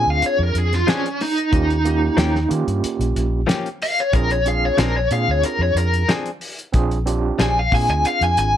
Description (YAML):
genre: straight-eighth soul blues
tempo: 92 BPM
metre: 4/4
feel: straight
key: Bb mixolydian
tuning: A4 = 439 Hz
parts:
  - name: overdriven electric guitar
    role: melody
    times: 0.0-8.6 s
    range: Db4 to Ab5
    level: -19 LUFS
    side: left 1 dB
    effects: tremolo
  - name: overdriven tine electric piano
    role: accompaniment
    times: 0.0-8.6 s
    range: Bb3 to Ab4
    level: -25 LUFS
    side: right 7 dB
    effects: fast tremolo
  - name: vintage muted fingered electric bass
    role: bass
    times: 0.0-8.6 s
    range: Ab1 to Eb3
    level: -21 LUFS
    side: equal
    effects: none
  - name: cloth-damped thuddy drum kit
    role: drums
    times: 0.2-8.5 s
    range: hi-hat, kick drum, snare drum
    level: -23 LUFS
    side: equal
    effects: none
  - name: direct-recorded clean electric guitar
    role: stabs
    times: 0.9-7.6 s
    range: F3 to Ab4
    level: -24 LUFS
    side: left 5 dB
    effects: none
room: light reverb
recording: none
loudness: -17 LUFS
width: side -10 dB against mid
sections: 0.0-8.6 A section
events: overdriven electric guitar solo 0.0-8.6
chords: 0.0 Bb9 (rootless); 1.5 Eb9; 4.1 Bb9